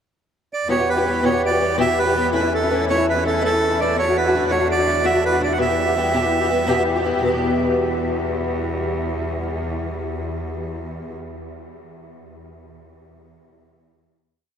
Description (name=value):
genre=celtic folk, Celtic slip jig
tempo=110 BPM (dotted quarters)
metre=9/8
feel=straight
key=E dorian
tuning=A4 = 440 Hz
part: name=accordion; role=melody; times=0.5-6.8 s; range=A4 to F#5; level=-22 LUFS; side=right 3 dB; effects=analog delay
part: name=fingerpicked swing-style acoustic guitar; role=accompaniment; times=0.7-11.3 s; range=E2 to G4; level=-21 LUFS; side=left 2 dB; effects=ensemble chorus
part: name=clear cello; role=drone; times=0.7-11.2 s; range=E2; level=-28 LUFS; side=equal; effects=none
room=wet huge ambient reverb, RT60 8.0 s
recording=dreamy mix soaked in reverb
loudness=-18 LUFS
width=side -8 dB against mid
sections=0.0-0.7 pickup bar; 0.7-7.2 A section; 7.2-10.5 final chord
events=none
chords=0.0 N.C.; 0.7 Em; 2.3 A/E; 3.9 D; 5.6 Em